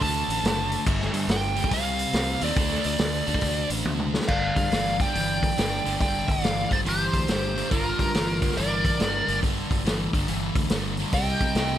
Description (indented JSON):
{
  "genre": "blues rock power trio and southern rock",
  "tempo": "140 BPM",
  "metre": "4/4",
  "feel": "swing 65% on 8ths",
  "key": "G minor",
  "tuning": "A4 = 441 Hz",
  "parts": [
    { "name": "smooth overdriven lead guitar", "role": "second line", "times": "0.0-11.8 s", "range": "F4 to A5", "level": "-31 LUFS", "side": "right 3 dB", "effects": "none" },
    { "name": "sludgy distorted guitar", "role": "riff", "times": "0.0-11.8 s", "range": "G2 to D4", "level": "-28 LUFS", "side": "equal", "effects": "overdrive" },
    { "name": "growling fingered electric bass", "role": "bass", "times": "0.0-11.8 s", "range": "F#1 to C3", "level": "-30 LUFS", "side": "equal", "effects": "overdrive" },
    { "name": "vintage drum kit", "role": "drums", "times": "0.0-11.7 s", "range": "crash cymbal, hi-hat, kick drum, snare drum, toms", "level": "-27 LUFS", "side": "equal", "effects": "none" },
    { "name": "biting lead guitar", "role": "melody", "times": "4.3-11.8 s", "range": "Bb4 to G5", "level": "-27 LUFS", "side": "equal", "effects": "wah, overdrive" }
  ],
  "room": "little or no reverb",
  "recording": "none",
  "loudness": "-22 LUFS",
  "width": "side -11 dB against mid",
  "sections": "0.0-4.3 A section; 4.3-11.8 B section",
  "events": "lead electric guitar solo 0.0-4.3; drum fill 3.9-4.3",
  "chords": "0.0 D; 0.9 G5; 1.7 Cm; 2.6 D5; 4.3 Gm7; 11.1 Cm"
}